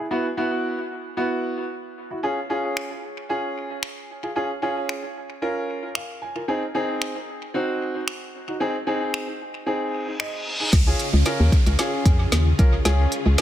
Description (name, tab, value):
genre	dance-pop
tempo	113 BPM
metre	4/4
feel	straight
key	Db major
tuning	A4 = 440 Hz
part	warm baby grand piano	accompaniment	0.0-13.4 s	B3 to Ab5	-26 LUFS	equal	sidechain pumping, dub echo
part	deep house drum kit	drums	2.8-13.4 s	crash cymbal, finger snaps, hi-hat, kick drum, snare drum	-22 LUFS	equal	dub echo
part	reverse cymbal, riser and downlifter	sound effects	10.0-13.4 s	none	-30 LUFS	right 1 dB	none
part	string machine, violas	sustained chords	10.7-13.4 s	Db3 to Ab4	-29 LUFS	left 1 dB	ensemble chorus, sidechain pumping
part	organ-like FM bass	bass	10.7-13.4 s	C2 to F2	-18 LUFS	equal	sidechain pumping
room	light reverb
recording	echo-heavy mix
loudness	-21 LUFS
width	side -12 dB against mid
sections	0.0-10.7 A section; 10.7-13.4 B section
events	grand piano fill 5.7-6.5, 9.9-10.7; reverse cymbal 10.0-10.7; build-up 10.7-13.4; drum fill 10.7-13.4; riser 10.7-13.4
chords	0.0 Esus2; 2.2 Db; 6.5 Ab; 10.7 Db